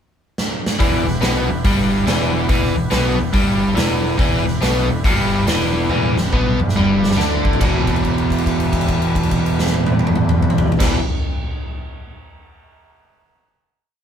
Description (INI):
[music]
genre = blues rock power trio and southern rock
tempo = 141 BPM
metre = 4/4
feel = swing 62% on 8ths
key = E minor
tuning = A4 = 443 Hz
[part]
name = big rock drum kit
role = drums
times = 0.4-10.9 s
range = crash cymbal, hi-hat, kick drum, snare drum, toms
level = -19 LUFS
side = equal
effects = none
[part]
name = overdriven tonewheel organ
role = sustained chords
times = 0.8-11.0 s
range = B3 to B4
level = -30 LUFS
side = right 2 dB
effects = none
[part]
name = biting overdriven guitar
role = riff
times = 0.8-11.0 s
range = E2 to D4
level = -18 LUFS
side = equal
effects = none
[part]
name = overdriven picked electric bass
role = bass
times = 0.8-11.0 s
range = E1 to D2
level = -23 LUFS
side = equal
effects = none
[sound]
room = light reverb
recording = band playing live in one room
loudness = -15 LUFS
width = side -8 dB against mid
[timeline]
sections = 0.0-0.8 pickup bar; 0.8-7.6 riff; 7.6-11.0 final chord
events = drum fill 0.4-0.8, 5.9-7.6; held note 7.6-10.8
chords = 0.0 N.C.; 0.8 Em